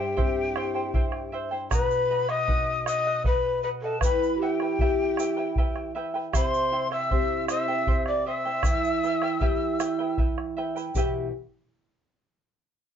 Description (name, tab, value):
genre	andean folk, Andean ensemble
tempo	78 BPM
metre	3/4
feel	straight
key	E minor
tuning	A4 = 440 Hz
part	breathy mellow large pan pipes	melody	0.0-10.2 s	G4 to E5	-28 LUFS	left 2 dB	plate reverb
part	breathy bright quena	second line	0.0-10.2 s	G5 to E6	-31 LUFS	left 2 dB	none
part	charango	accompaniment	0.0-11.3 s	E4 to G5	-33 LUFS	right 2 dB	none
part	nylon-string guitar	accompaniment	0.0-11.3 s	E2 to B4	-31 LUFS	right 2 dB	none
part	bombo	percussion	0.2-11.3 s	none	-27 LUFS	equal	none
part	egg shaker	percussion	1.7-11.3 s	none	-40 LUFS	right 7 dB	none
room	wet small room reverb, RT60 0.5 s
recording	heard from further back in the room, nothing above 7.5 kHz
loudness	-23 LUFS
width	side -8 dB against mid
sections	0.0-10.9 A section; 10.9-13.0 B section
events	none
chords	0.0 C; 1.7 B; 4.0 Em; 6.3 C; 8.6 Em